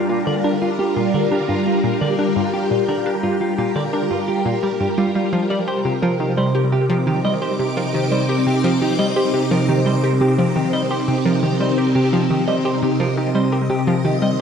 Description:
ambient, sequencer-driven space music; 86 BPM; 4/4; straight; A4 = 441 Hz
phased string machine; sustained chords; 0.0-14.4 s; C3 to D6; -19 LUFS; equal; ensemble chorus, phaser
clean electric guitar; arpeggios; 0.0-14.3 s; F4 to Eb5; -23 LUFS; right 2 dB; auto-pan, analog delay
analog pluck; riff; 0.1-14.4 s; G2 to G4; -22 LUFS; equal; chorus, analog delay
wet plate reverb, RT60 2.7 s; dreamy mix soaked in reverb; -16 LUFS; side -7 dB against mid
0.0-14.4 A section
0.0 Gm7; 5.7 Cm7

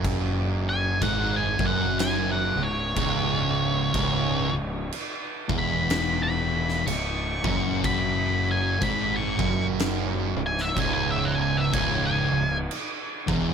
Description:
stoner and doom metal; 62 BPM; 4/4; swing 59% on 8ths; C# minor; A4 = 440 Hz
fuzz guitar; riff; 0.0-13.5 s; C#2 to G#2; -28 LUFS; right 10 dB; distortion
thick fuzz guitar; riff; 0.0-13.5 s; C#2 to G#2; -30 LUFS; left 10 dB; distortion
fuzz fingered electric bass; bass; 0.0-13.5 s; C#1 to G#1; -30 LUFS; equal; overdrive
oversized low-tuned drum kit; drums; 0.0-13.5 s; crash cymbal, kick drum, snare drum; -30 LUFS; equal
octave-fuzz lead guitar; melody; 0.7-12.6 s; C#5 to C#6; -28 LUFS; equal; distortion, tape echo
small room reverb; -22 LUFS; side -7 dB against mid
0.0-13.5 A section
lead electric guitar solo 0.0-13.5
0.0 C#m

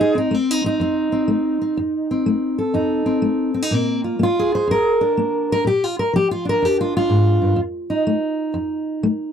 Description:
acoustic country blues, solo or duo; 124 BPM; 4/4; swing 66% on 8ths; F mixolydian; A4 = 440 Hz
fingerpicked steel-string acoustic guitar; solo; 0.0-9.3 s; F2 to C5; -17 LUFS; equal
light reverb; dry, close 1970s-style studio recording; -17 LUFS; side -8 dB against mid
0.0-9.3 A section
0.0 F7; 3.7 Bb7; 7.6 F7

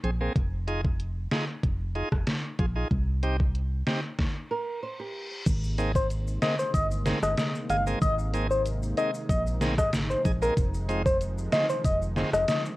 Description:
dancehall; 94 BPM; 4/4; straight; A4 = 445 Hz
bright tonewheel organ; accompaniment; 0.0-12.3 s; Ab3 to Ab4; -33 LUFS; right 1 dB; overdrive, stopped rotary speaker, cassette tape
organ-like FM bass; bass; 0.0-12.5 s; F1 to C2; -29 LUFS; equal
pop drum kit; drums; 0.0-12.6 s; crash cymbal, hi-hat, kick drum, rim click, snare drum; -28 LUFS; equal; overdrive, cassette tape
reverse cymbal; sound effects; 4.5-5.5 s; -42 LUFS; left 2 dB
nylon-string guitar; arpeggios; 4.5-5.4 s; G4 to C5; -34 LUFS; right 4 dB; cassette tape, tape echo
warm analog pad; sustained chords; 5.5-12.8 s; C3 to Eb4; -38 LUFS; right 1 dB; chorus, sidechain pumping, cassette tape
maracas; percussion; 5.5-12.8 s; -48 LUFS; left 4 dB
soft struck synth lead; melody; 6.0-12.6 s; Bb4 to F5; -28 LUFS; left 1 dB; chorus, phaser, cassette tape
light reverb; home recording on cassette; -25 LUFS; side -18 dB against mid
0.0-5.5 A section; 5.5-12.8 B section
stop 4.2-5.5; reverse cymbal 4.5-5.5
0.4 Fm7; 2.9 Cm; 5.5 Abadd9; 10.6 Fm7

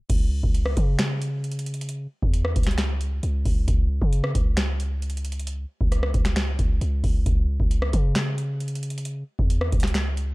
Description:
hip hop, trap; 134 BPM; 4/4; half-time; C# minor; A4 = 440 Hz
warm 808-style bass; bass; 0.1-10.3 s; C#2 to C#3; -25 LUFS; equal
booming analog drum machine; drums; 0.1-10.3 s; crash cymbal, finger snaps, hi-hat, kick drum, rim click, snare drum; -23 LUFS; equal
little or no reverb; dark, warm production, tape stop; -22 LUFS; side -22 dB against mid
0.1-10.3 A section

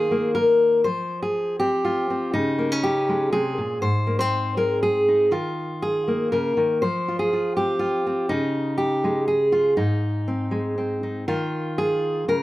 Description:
folk, solo fingerstyle acoustic guitar; 121 BPM; 3/4; straight; Eb mixolydian; A4 = 440 Hz
fingerpicked steel-string acoustic guitar; solo; 0.0-12.4 s; Ab2 to C5; -20 LUFS; equal
light reverb; -20 LUFS; side -16 dB against mid
0.0-11.3 A section; 11.3-12.4 A section
0.0 Ebsus2; 0.9 F5; 2.3 Dbsus2; 3.8 Ab; 5.3 Ebsus2; 6.8 F5; 8.3 Dbsus2; 9.8 Ab; 11.3 Ebsus2

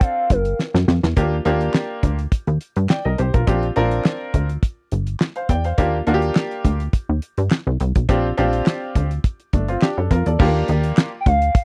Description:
early-eighties boogie funk; 104 BPM; 4/4; straight; A4 = 440 Hz
gliding portamento lead; melody; 0.0-0.6, 11.2-11.6 s; Bb4 to G5; -24 LUFS; equal; chorus, tape echo
clear grand piano; accompaniment; 0.0-11.1 s; A3 to G5; -24 LUFS; equal
damped 70s drum kit; drums; 0.0-11.6 s; crash cymbal, handclaps, hi-hat, kick drum, snare drum; -20 LUFS; equal
plucky analog bass; bass; 0.3-11.5 s; G1 to G2; -22 LUFS; equal
little or no reverb; dry, close 1970s-style studio recording; -20 LUFS; mono
0.0-1.2 A section; 1.2-10.4 B section; 10.4-11.6 C section
soft synth lead solo 0.0-1.2; drum fill 0.6-1.2
0.0 Bb6; 1.2 Ebmaj9; 3.5 Bb6; 5.8 Ebmaj9; 8.1 Bb6; 10.4 Ebmaj9

